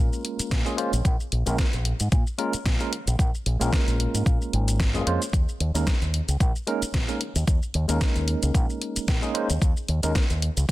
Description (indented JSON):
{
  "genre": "nu-disco, nu disco",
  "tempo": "112 BPM",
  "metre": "4/4",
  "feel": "swing 55% on 16ths",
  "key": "Bb minor",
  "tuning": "A4 = 441 Hz",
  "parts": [
    { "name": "tine electric piano", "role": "accompaniment", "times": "0.0-10.2 s", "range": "Ab3 to C5", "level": "-29 LUFS", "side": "right 1 dB", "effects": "medium stereo tremolo, slapback echo" },
    { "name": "fingered electric bass with an envelope filter", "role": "bass", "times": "0.0-10.7 s", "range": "Ab1 to Bb2", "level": "-25 LUFS", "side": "equal", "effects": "sidechain pumping" },
    { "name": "pop drum kit", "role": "drums", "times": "0.1-10.7 s", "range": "hi-hat, shaker, snare drum", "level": "-30 LUFS", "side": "equal", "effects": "overdrive" },
    { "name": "electronic kick drum", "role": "drums", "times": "0.5-10.7 s", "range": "none", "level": "-23 LUFS", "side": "equal", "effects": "overdrive" }
  ],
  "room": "little or no reverb",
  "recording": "dense, heavily limited modern master",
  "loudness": "-22 LUFS",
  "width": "side -17 dB against mid",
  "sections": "0.0-10.7 A section",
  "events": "none",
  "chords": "0.0 Bbm7; 5.3 Eb7sus4"
}